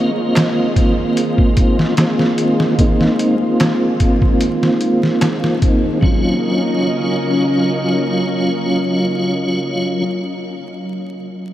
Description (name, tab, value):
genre	trip hop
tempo	74 BPM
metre	4/4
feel	straight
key	Eb dorian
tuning	A4 = 441 Hz
part	tonewheel organ	accompaniment	0.0-10.0 s	Gb3 to F4	-16 LUFS	equal	chorus vibrato, tremolo, low-pass filter, tape echo
part	string machine, cellos	sustained chords	0.0-10.0 s	Db4 to C6	-22 LUFS	equal	ensemble chorus
part	trip hop sampler-style drum kit	drums	0.4-6.2 s	hi-hat, kick drum, snare drum	-17 LUFS	equal	none
part	darbuka	percussion	0.4-5.4 s	none	-35 LUFS	right 2 dB	none
room	wet huge ambient reverb, RT60 7.8 s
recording	dreamy mix soaked in reverb, vinyl crackle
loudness	-13 LUFS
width	side -13 dB against mid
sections	0.0-6.0 A section; 6.0-9.3 B section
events	filter sweep on tonewheel organ 0.0-6.0; filter sweep on string machine 0.0-6.0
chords	0.0 Ab6; 6.0 Ebm7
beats	0.35 1.16 1.97 | 2.78 3.59 4.41 5.22 | 6.03 6.84 7.65 8.46